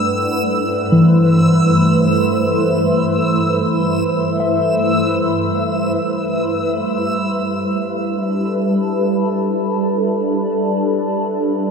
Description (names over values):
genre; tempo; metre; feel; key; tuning
ambient; free time; none; none; G major; A4 = 440 Hz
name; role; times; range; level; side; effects
shimmering ambient pad; sustained chords; 0.0-11.7 s; G2 to C5; -17 LUFS; equal; chorus, built-in reverb, phaser
muted felt-like synth keys; arpeggios; 0.0-10.0 s; E3 to F#5; -18 LUFS; equal; chorus, diffuse ambient delay
backwards swelling texture; texture; 0.0-6.5 s; E6; -24 LUFS; equal; built-in reverb
room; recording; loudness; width
wet cathedral reverb, RT60 5.3 s; in a vast, echoing space; -14 LUFS; side -5 dB against mid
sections
0.0-6.5 A section; 6.5-11.7 B section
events
none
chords
0.0 Amadd9/G; 6.5 Gadd9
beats
free time